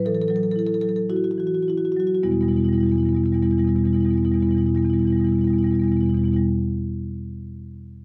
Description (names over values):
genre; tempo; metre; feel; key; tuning
classical, contemporary piece for solo marimba; 50-62 BPM; 3/4; rubato; E minor; A4 = 445 Hz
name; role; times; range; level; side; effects
marimba with medium mallets; solo; 0.0-6.4 s; E2 to A4; -22 LUFS; equal; none
room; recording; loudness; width
light reverb; none; -21 LUFS; mono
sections
0.0-2.2 A section; 2.2-5.5 B section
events
slowing down 0.0-2.2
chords
0.0 A5; 2.2 Em